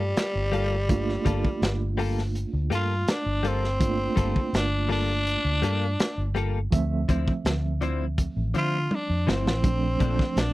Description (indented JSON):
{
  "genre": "straight-eighth soul blues",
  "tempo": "82 BPM",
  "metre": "4/4",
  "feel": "straight",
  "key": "unclear",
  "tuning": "A4 = 440 Hz",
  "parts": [
    { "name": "growling tenor saxophone", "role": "melody", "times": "0.0-10.5 s", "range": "G3 to F4", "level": "-28 LUFS", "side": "equal", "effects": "slapback echo" },
    { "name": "reed electric piano", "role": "accompaniment", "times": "0.0-10.5 s", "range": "F3 to E5", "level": "-32 LUFS", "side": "right 5 dB", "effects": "fast tremolo" },
    { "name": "direct-recorded clean electric guitar", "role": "stabs", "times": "0.0-10.2 s", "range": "Bb2 to A4", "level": "-30 LUFS", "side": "left 5 dB", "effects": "lush chorus" },
    { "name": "vintage muted fingered electric bass", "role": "bass", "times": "0.0-10.5 s", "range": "G1 to D3", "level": "-27 LUFS", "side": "equal", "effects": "none" },
    { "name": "crunchy breakbeat drum kit", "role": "drums", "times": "0.2-10.5 s", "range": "hi-hat, kick drum, snare drum, toms", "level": "-26 LUFS", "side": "equal", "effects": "none" }
  ],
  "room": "little or no reverb",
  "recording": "dry, close 1970s-style studio recording",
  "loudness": "-23 LUFS",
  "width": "side -17 dB against mid",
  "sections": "0.0-10.5 A section",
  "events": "tenor saxophone solo 0.0-10.5; drum fill 8.9-9.6",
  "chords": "0.0 Gm9; 6.7 Dm9; 9.6 Bbmaj7"
}